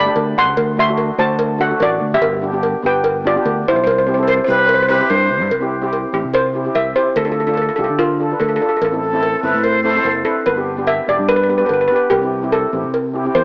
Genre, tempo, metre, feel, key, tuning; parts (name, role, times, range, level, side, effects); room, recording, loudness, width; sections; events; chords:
calypso; 146 BPM; 4/4; straight; C major; A4 = 440 Hz
steel pan; melody; 0.0-13.4 s; E4 to C6; -19 LUFS; equal; cassette tape
steel pan; accompaniment; 0.0-13.4 s; A3 to B4; -24 LUFS; equal; cassette tape
fingered electric bass; bass; 0.0-13.4 s; E1 to D3; -26 LUFS; equal
cowbell; percussion; 0.2-13.4 s; -24 LUFS; equal
breathy jazz flute; second line; 4.3-5.5, 9.0-10.1 s; A4 to C5; -19 LUFS; equal; cassette tape
moderate spring reverb, RT60 2.6 s; home recording on cassette, AM radio sound; -16 LUFS; mono
0.0-5.5 A section; 5.5-13.4 B section
steel pan solo 5.5-13.4
0.0 Gsus2; 0.6 D7; 2.2 G; 3.9 C; 7.2 Dm; 8.8 Am; 10.5 G; 12.1 C